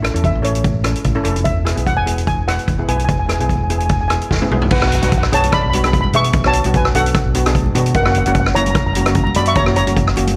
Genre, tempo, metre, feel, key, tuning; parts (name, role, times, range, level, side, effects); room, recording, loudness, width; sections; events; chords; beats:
calypso; 148 BPM; 4/4; swing 54% on 16ths; A4 = 444 Hz
steel pan; melody; 0.0-10.4 s; A4 to C#6; -22 LUFS; equal
steel pan; accompaniment; 0.0-10.4 s; A#3 to B4; -25 LUFS; equal
overdriven fingered electric bass; bass; 0.0-10.3 s; E1 to B2; -22 LUFS; equal
street-band drum kit; drums; 0.0-10.4 s; crash cymbal, hi-hat, kick drum, rim click, snare drum, toms; -20 LUFS; equal
congas; percussion; 4.7-10.4 s; -30 LUFS; equal
light reverb; -16 LUFS; mono
0.0-4.7 A section; 4.7-10.4 B section
drum fill 4.3-4.7
0.0 A; 1.5 E; 4.7 Bmadd9; 7.9 F#
0.24 0.65 1.06 | 1.46 1.87 2.28 2.69 | 3.09 3.50 3.90 4.31 | 4.71 5.12 5.52 5.93 | 6.33 6.74 7.14 7.54 | 7.95 8.35 8.76 9.16 | 9.56 9.97